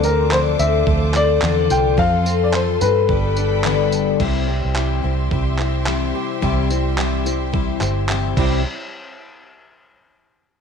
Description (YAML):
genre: acoustic pop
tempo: 108 BPM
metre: 4/4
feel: swing 60% on 16ths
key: C major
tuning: A4 = 440 Hz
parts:
  - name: dark upright piano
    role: melody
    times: 0.0-3.9 s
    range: Bb4 to G5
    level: -21 LUFS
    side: left 1 dB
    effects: none
  - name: picked twelve-string acoustic guitar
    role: accompaniment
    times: 0.0-8.6 s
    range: G2 to A4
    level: -20 LUFS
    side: left 12 dB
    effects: none
  - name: clear studio string section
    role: sustained chords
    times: 0.0-8.6 s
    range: E4 to D6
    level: -31 LUFS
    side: right 2 dB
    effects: none
  - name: flamenco guitar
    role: arpeggios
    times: 0.0-8.6 s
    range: G3 to A4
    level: -29 LUFS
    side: right 13 dB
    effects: none
  - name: vintage muted fingered electric bass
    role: bass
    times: 0.0-8.6 s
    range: G1 to G2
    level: -20 LUFS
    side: right 2 dB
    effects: none
  - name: dusty soul sampler-style drum kit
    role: drums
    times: 0.0-8.5 s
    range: crash cymbal, handclaps, kick drum, tambourine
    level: -25 LUFS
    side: right 2 dB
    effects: none
room: light reverb, small room ambience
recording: 1960s-style stereo with parts hard left and right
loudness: -16 LUFS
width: side -6 dB against mid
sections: 0.0-4.2 A section; 4.2-8.7 B section; 8.7-10.6 C section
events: none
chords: 0.0 Dm7; 2.0 F; 3.1 Gadd9; 4.2 C; 8.7 N.C.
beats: 0.32 0.87 1.43 | 1.98 2.54 3.09 3.65 | 4.20 4.76 5.32 5.87 | 6.43 6.98 7.54 8.10